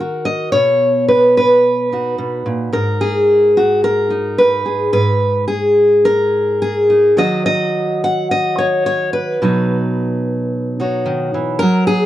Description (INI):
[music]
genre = folk, solo fingerstyle acoustic guitar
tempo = 109 BPM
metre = 4/4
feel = rubato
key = B major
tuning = A4 = 438 Hz
[part]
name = fingerpicked steel-string acoustic guitar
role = solo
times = 0.0-12.1 s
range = G#2 to F#5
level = -13 LUFS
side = equal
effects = none
[sound]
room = little or no reverb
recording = worn, warbling old tape, cassette tape, warbly pitch drift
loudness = -13 LUFS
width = side -13 dB against mid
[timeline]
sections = 0.0-12.1 A section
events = none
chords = 0.0 D#m; 0.5 Badd9; 2.7 G#madd9; 7.2 D#m; 9.4 Badd9